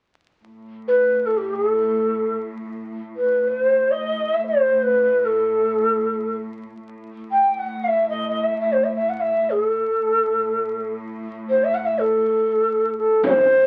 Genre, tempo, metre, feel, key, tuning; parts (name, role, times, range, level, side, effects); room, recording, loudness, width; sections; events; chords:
Arabic maqam ensemble; free time; A maqam nikriz; A4 = 443 Hz
muted studio cello section; drone; 0.4-13.3 s; A2; -34 LUFS; equal
low ney; melody; 0.9-13.7 s; G4 to G5; -20 LUFS; equal
upright bass; bass; 13.2-13.7 s; A1; -41 LUFS; equal
frame drum; percussion; 13.2-13.4 s; -27 LUFS; equal
moderate studio reverb, RT60 0.5 s; very old 78 rpm record, vinyl crackle; -21 LUFS; mono
0.4-13.2 A section